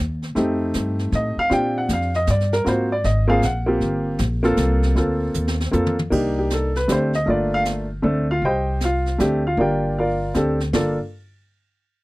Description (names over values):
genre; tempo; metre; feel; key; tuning
jazz piano trio; 156 BPM; 3/4; swing 65% on 8ths; G minor; A4 = 440 Hz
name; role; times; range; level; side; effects
upright bass; bass; 0.0-11.0 s; G1 to Bb2; -22 LUFS; equal; none
jazz brush drum kit; drums; 0.2-11.1 s; brushed snare drum, crash cymbal, hi-hat, kick drum, snare drum, toms; -29 LUFS; right 1 dB; none
warm upright piano; melody; 0.3-11.0 s; A3 to G5; -20 LUFS; equal; none
room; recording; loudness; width
little or no reverb; dry, close 1970s-style studio recording; -18 LUFS; side -21 dB against mid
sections
0.0-6.1 A section; 6.1-10.7 B section; 10.7-11.9 C section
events
drum fill 5.3-6.1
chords
0.4 F7; 1.5 Bb69; 2.7 Ab13; 3.8 Gm11; 6.1 Cm7; 6.9 D7sus4; 7.3 Gm9; 8.0 D5; 8.4 Cm; 9.2 D7sus4; 9.6 Gm7; 10.3 D7sus4; 10.7 G5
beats
| 0.35 0.74 1.12 | 1.50 1.89 2.27 | 2.66 3.04 3.42 | 3.81 4.19 4.58 | 4.96 5.34 5.73 | 6.11 6.50 6.88 | 7.26 7.65 8.04 | 8.42 8.80 9.19 | 9.57 9.96 10.35 | 10.73 11.12